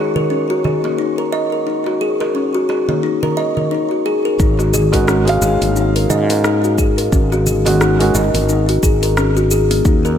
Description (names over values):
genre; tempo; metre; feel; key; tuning
organic downtempo; 88 BPM; 4/4; swing 58% on 16ths; unclear; A4 = 440 Hz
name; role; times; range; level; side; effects
felt-muted upright piano; accompaniment; 0.0-8.2 s; Eb3 to F5; -22 LUFS; right 2 dB; sidechain pumping, ping-pong delay
kalimba; arpeggios; 0.0-10.2 s; Bb3 to Eb5; -16 LUFS; left 2 dB; ping-pong delay
wind-like tuned noise texture; texture; 0.0-4.4 s; Db5; -30 LUFS; right 4 dB; built-in reverb
deep house drum kit; drums; 0.2-10.2 s; hi-hat, rim click, shaker; -23 LUFS; left 1 dB; low-pass filter on perc, low-pass filter on hats, low-pass filter on snare
darbuka; percussion; 0.2-10.2 s; none; -24 LUFS; right 2 dB; none
fretless electric bass; bass; 4.4-10.2 s; Ab1 to Ab2; -17 LUFS; equal; none
electronic kick drum; drums; 4.4-10.0 s; none; -16 LUFS; equal; none
room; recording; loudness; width
light reverb, small room ambience; none; -13 LUFS; side -9 dB against mid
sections
0.0-4.4 A section; 4.4-10.2 B section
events
none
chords
0.0 Ebm7; 4.4 Ab5